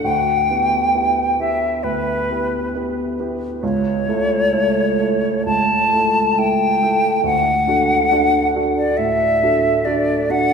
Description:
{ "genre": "classical, romantic duo for flute and grand piano", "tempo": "68 BPM", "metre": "4/4", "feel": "rubato", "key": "D major", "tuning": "A4 = 440 Hz", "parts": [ { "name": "bright silver concert flute", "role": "melody", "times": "0.0-10.5 s", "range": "B4 to A5", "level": "-17 LUFS", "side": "left 1 dB", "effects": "none" }, { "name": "warm grand piano", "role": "accompaniment", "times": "0.0-10.5 s", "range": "C#2 to A4", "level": "-20 LUFS", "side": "right 2 dB", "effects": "none" } ], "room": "wet church reverb, RT60 3.6 s", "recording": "recorded in a church or concert hall", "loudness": "-15 LUFS", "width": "side -6 dB against mid", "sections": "0.0-10.5 A section", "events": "none", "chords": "0.0 Em7/D; 3.6 A/C#; 7.2 D" }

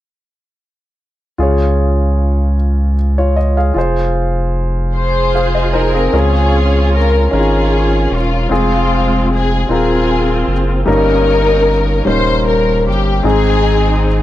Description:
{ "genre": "slow gospel", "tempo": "51 BPM (dotted quarters)", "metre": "6/8", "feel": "straight", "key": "Db major", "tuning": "A4 = 440 Hz", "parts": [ { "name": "clear concert grand piano", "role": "accompaniment", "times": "1.4-14.2 s", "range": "G2 to F5", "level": "-16 LUFS", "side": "left 1 dB", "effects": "none" }, { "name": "saturated sub bass", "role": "bass", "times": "1.4-14.2 s", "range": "Eb1 to Db2", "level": "-15 LUFS", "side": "equal", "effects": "none" }, { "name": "dark studio string section", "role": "melody", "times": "5.0-14.2 s", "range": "Ab3 to C5", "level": "-15 LUFS", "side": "left 1 dB", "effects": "none" } ], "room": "small room ambience", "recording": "dry, close 1970s-style studio recording", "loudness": "-11 LUFS", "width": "side -14 dB against mid", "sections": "1.4-6.1 A section; 6.1-14.2 B section", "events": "none", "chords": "1.4 Db; 3.8 Fm; 6.1 Db; 8.5 Fm; 10.9 Eb7/G; 13.2 Ab" }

